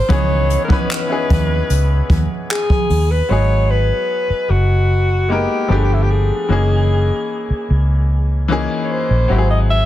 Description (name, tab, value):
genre	contemporary R&B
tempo	75 BPM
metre	4/4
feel	straight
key	G# minor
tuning	A4 = 440 Hz
part	warm alto saxophone	melody	0.0-9.9 s	E4 to E5	-20 LUFS	left 1 dB	digital delay
part	bright grand piano	accompaniment	0.0-9.9 s	E3 to B4	-22 LUFS	left 3 dB	none
part	vintage muted fingered electric bass	bass	0.1-9.9 s	F#1 to D#2	-15 LUFS	equal	none
part	jazz brush drum kit	drums	0.1-3.1 s	handclaps, hi-hat, kick drum	-18 LUFS	right 1 dB	none
room	light reverb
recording	dense, heavily limited modern master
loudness	-14 LUFS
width	side -13 dB against mid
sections	0.0-3.3 A section; 3.3-9.9 B section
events	none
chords	0.1 C#m7; 3.3 G#m9; 5.7 G9; 6.5 F#13; 9.3 G#7b13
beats	| 0.10 0.90 1.70 2.50 | 3.30 4.10 4.90 5.70 | 6.50 7.30 8.10 8.90 | 9.70